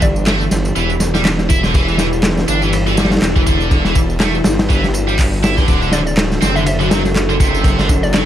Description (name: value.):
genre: breakbeat, breaks.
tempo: 122 BPM.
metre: 4/4.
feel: swing 57% on 16ths.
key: E minor.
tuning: A4 = 440 Hz.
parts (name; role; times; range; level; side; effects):
hollow square pluck; melody; 0.0-0.5, 5.9-8.2 s; D5 to E5; -26 LUFS; left 1 dB; chorus, telephone sound, dub echo.
warbly tape-like pad; sustained chords; 0.0-8.3 s; D3 to A4; -22 LUFS; left 1 dB; chorus, built-in reverb, sidechain pumping.
detuned saw bass; bass; 0.0-8.3 s; D1 to G1; -18 LUFS; equal; none.
crunchy breakbeat drum kit; drums; 0.0-8.3 s; hi-hat, kick drum, ride cymbal, snare drum; -16 LUFS; equal; none.
electronic tambourine and handclaps; drums; 0.0-8.3 s; none; -26 LUFS; right 1 dB; overdrive.
high-gain distorted guitar; riff; 0.3-8.3 s; C3 to E4; -20 LUFS; right 1 dB; distortion, overdrive, dub echo.
room: little or no reverb.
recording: vinyl crackle.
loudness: -12 LUFS.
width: side -11 dB against mid.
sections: 0.0-8.3 A section.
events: none.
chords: 0.0 Emadd9; 5.7 D.